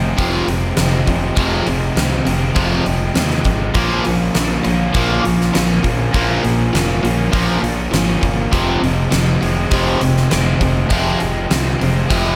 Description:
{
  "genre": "hard rock",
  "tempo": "101 BPM",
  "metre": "4/4",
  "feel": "straight",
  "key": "F minor",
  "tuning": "A4 = 440 Hz",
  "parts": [
    { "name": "cranked stack guitar", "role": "riff", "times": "0.0-12.4 s", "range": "F2 to Bb3", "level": "-24 LUFS", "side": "equal", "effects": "overdrive, phaser" },
    { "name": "overdriven electric guitar", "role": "riff", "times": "0.0-12.4 s", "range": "F2 to Db4", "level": "-24 LUFS", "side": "equal", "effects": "slapback echo" },
    { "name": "overdriven semi-hollow guitar", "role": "riff", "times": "0.0-12.4 s", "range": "F2 to Bb3", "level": "-23 LUFS", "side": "equal", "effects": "none" },
    { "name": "fuzz fingered electric bass", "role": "bass", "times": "0.0-12.3 s", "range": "F1 to Eb2", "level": "-23 LUFS", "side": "equal", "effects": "overdrive" },
    { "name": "huge arena drum kit", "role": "drums", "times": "0.2-12.2 s", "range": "hi-hat, kick drum, snare drum", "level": "-23 LUFS", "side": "equal", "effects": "none" }
  ],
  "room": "moderate scoring stage reverb, RT60 1.9 s, studio ambience",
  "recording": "big arena sound",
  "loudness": "-16 LUFS",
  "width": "mono",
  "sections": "0.0-12.4 A section",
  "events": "none",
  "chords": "0.0 Fm; 3.8 Bbm; 8.5 Fm"
}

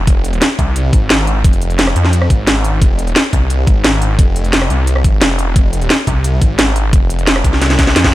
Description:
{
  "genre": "dark technical drum and bass",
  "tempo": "175 BPM",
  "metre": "4/4",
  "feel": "straight",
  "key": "F minor",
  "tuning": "A4 = 439 Hz",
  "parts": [
    { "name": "snarling distorted saw bass", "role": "bass", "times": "0.0-8.1 s", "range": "F1 to F2", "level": "-14 LUFS", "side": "equal", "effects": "distortion, sidechain pumping" },
    { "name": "drum and bass drum kit", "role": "drums", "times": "0.1-8.1 s", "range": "hi-hat, rim click, snare drum", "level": "-15 LUFS", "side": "equal", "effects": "none" },
    { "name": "electronic kick drum", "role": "drums", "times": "0.1-8.1 s", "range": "none", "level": "-12 LUFS", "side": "equal", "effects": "none" }
  ],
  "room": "little or no reverb",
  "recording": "none",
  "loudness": "-10 LUFS",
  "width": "side -16 dB against mid",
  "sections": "0.0-8.1 A section",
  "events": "drum fill 7.6-8.1",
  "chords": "none"
}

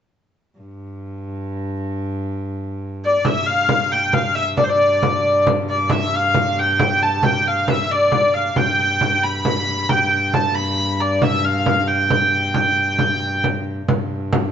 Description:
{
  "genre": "medieval dance",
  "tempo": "90 BPM (dotted quarters)",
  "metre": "6/8",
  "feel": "straight",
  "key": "G mixolydian",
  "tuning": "A4 = 437 Hz",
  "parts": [
    { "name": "rich viola da gamba", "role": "drone", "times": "0.6-14.5 s", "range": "G2", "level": "-26 LUFS", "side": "equal", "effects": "none" },
    { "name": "clear hurdy-gurdy", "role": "melody", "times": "3.1-13.4 s", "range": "C5 to B5", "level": "-17 LUFS", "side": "equal", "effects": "none" },
    { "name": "frame drum", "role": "percussion", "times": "3.2-14.5 s", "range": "none", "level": "-22 LUFS", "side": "right 1 dB", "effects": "none" }
  ],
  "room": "wet stone room reverb, RT60 1.2 s",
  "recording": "band playing live in one room, nothing above 7.8 kHz",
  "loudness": "-16 LUFS",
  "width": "side -8 dB against mid",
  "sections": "0.6-3.2 A section; 3.2-13.9 B section",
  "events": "none",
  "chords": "none"
}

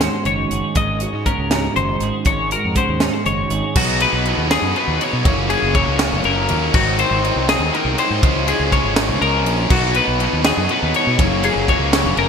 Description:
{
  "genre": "math rock and midwest emo",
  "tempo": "81 BPM (dotted quarters)",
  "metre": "6/8",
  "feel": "straight",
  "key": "unclear",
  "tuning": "A4 = 441 Hz",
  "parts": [
    { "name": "twelve-string electric guitar", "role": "accompaniment", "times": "0.0-5.3 s", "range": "Ab2 to Ab4", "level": "-24 LUFS", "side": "right 5 dB", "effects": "analog chorus" },
    { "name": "twelve-string electric guitar", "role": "arpeggios", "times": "0.0-12.3 s", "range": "Gb4 to Eb5", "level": "-20 LUFS", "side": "left 6 dB", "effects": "wide subtle chorus, ping-pong delay" },
    { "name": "fuzz fingered electric bass", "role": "bass", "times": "0.0-12.3 s", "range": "Gb1 to Cb3", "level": "-22 LUFS", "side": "equal", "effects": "overdrive" },
    { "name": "crisp fusion drum kit", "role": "drums", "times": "0.0-12.3 s", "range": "crash cymbal, hi-hat, kick drum, ride cymbal, snare drum", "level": "-20 LUFS", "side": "equal", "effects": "gated reverb" },
    { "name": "overdriven electric guitar", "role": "riff", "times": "3.8-12.3 s", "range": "Gb2 to Eb4", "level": "-20 LUFS", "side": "right 1 dB", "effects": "none" }
  ],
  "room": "light reverb, small room reverb",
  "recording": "bright 1980s-style digital production",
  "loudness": "-15 LUFS",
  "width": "side -6 dB against mid",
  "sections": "0.0-3.8 A section; 3.8-12.3 B section",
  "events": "none",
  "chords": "0.0 Ab7sus4; 3.8 Cb69; 5.3 Gbadd9; 6.7 Ab9; 8.2 Db6; 9.7 Cb69; 11.2 Gbadd9"
}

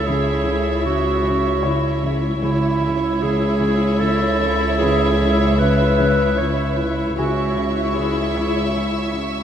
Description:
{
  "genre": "cinematic, suspense film score",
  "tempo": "76 BPM",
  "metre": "3/4",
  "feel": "straight",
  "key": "C# minor",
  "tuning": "A4 = 441 Hz",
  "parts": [
    { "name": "dark studio violin section", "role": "melody", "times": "0.0-9.4 s", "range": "E5", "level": "-29 LUFS", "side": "right 2 dB", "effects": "none" },
    { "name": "dark chamber violin section", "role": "second line", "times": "0.0-9.4 s", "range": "C#5", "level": "-28 LUFS", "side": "equal", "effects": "none" },
    { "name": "warm clarinet", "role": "second line", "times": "0.0-9.3 s", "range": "E4 to C#5", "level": "-22 LUFS", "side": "right 2 dB", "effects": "none" },
    { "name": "dark studio viola section", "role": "accompaniment", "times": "0.0-9.4 s", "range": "E4", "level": "-25 LUFS", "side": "left 1 dB", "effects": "none" },
    { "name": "warm studio cello section", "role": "bass", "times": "0.0-9.4 s", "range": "C#2", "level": "-24 LUFS", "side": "equal", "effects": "none" },
    { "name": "warm studio double bass section", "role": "bass", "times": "0.0-9.4 s", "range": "C#2", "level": "-25 LUFS", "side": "equal", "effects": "none" },
    { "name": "warm concert grand piano", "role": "texture", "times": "0.0-9.4 s", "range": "G#4 to B6", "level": "-35 LUFS", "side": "left 1 dB", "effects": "none" },
    { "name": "warm studio cello section", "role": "riff", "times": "0.1-9.4 s", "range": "C#3", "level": "-28 LUFS", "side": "left 2 dB", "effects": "none" },
    { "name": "clear studio violin section", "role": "texture", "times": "7.2-9.4 s", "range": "C#6 to E6", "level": "-31 LUFS", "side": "equal", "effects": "none" }
  ],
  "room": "wet cathedral reverb, RT60 5.8 s",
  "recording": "in a vast, echoing space",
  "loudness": "-16 LUFS",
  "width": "side -9 dB against mid",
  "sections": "0.0-9.4 A section",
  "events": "none",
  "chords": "0.0 C#m"
}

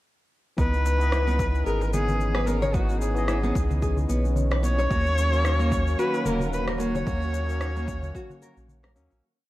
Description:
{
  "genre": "organic downtempo",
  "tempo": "111 BPM",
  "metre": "4/4",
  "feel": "swing 56% on 16ths",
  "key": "C# dorian",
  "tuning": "A4 = 440 Hz",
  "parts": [
    { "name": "rich kamancheh", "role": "melody", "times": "0.6-8.6 s", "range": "F#4 to C#5", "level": "-29 LUFS", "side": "left 1 dB", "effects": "digital delay" },
    { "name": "barky tine electric piano", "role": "accompaniment", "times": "0.6-9.3 s", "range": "E3 to D#5", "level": "-34 LUFS", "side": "left 3 dB", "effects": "medium stereo tremolo, sidechain pumping, digital delay" },
    { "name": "warm analog pad", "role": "sustained chords", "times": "0.6-9.2 s", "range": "D#3 to C#5", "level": "-34 LUFS", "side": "right 2 dB", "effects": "chorus, vintage 12-bit sampler grit, sidechain pumping" },
    { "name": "nylon-string guitar", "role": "arpeggios", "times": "0.6-9.2 s", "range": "A#3 to C#5", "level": "-31 LUFS", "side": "equal", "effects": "digital delay" },
    { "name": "warm sub bass", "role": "bass", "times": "0.6-9.2 s", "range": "D#1 to D#2", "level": "-25 LUFS", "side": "equal", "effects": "sidechain pumping" },
    { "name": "electronic kick drum", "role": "drums", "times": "0.6-8.3 s", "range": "none", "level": "-28 LUFS", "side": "equal", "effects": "none" },
    { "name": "electronic shaker and rim click", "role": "drums", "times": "0.6-9.2 s", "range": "none", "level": "-36 LUFS", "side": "left 1 dB", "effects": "none" },
    { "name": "darbuka", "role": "percussion", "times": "0.9-9.2 s", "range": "none", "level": "-36 LUFS", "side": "left 1 dB", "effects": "none" },
    { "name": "wind-like tuned noise texture", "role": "texture", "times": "5.9-9.2 s", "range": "F#4 to F#5", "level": "-42 LUFS", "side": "equal", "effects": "built-in reverb" }
  ],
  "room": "light reverb, digital ambience",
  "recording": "dark, warm production",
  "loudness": "-22 LUFS",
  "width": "side -16 dB against mid",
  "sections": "0.6-9.2 groove",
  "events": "fade-out 6.3-9.2",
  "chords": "0.6 C#m7; 4.9 D#m7"
}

